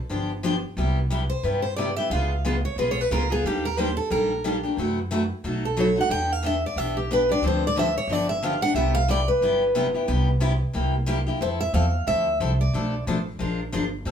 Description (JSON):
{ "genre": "acoustic string swing (jazz manouche)", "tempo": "181 BPM", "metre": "4/4", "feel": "swing 59% on 8ths", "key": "C major", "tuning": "A4 = 440 Hz", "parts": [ { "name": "picked steel-string acoustic guitar", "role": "accompaniment", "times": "0.1-14.1 s", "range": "B2 to Bb4", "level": "-26 LUFS", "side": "left 2 dB", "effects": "none" }, { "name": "upright bass", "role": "bass", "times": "0.1-14.1 s", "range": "G1 to G2", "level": "-26 LUFS", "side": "right 1 dB", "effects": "none" }, { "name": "picked steel-string acoustic guitar", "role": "melody", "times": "1.3-13.0 s", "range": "G4 to G5", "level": "-24 LUFS", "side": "equal", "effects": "none" } ], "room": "moderate studio reverb, RT60 0.6 s", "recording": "band playing live in one room", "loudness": "-21 LUFS", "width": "side -8 dB against mid", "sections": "0.8-11.4 A section; 11.4-14.1 B section", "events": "steel-string acoustic guitar solo 0.8-11.4", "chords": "0.1 G7; 0.8 Cmaj7; 2.1 Db7; 3.4 Ebmaj7; 4.8 F#m7b5; 5.4 B7; 6.1 Em7; 7.4 Dm7; 8.1 G7; 8.8 Cmaj7; 10.7 C7; 11.4 Fmaj7; 12.7 Bm7b5; 13.4 Bb7" }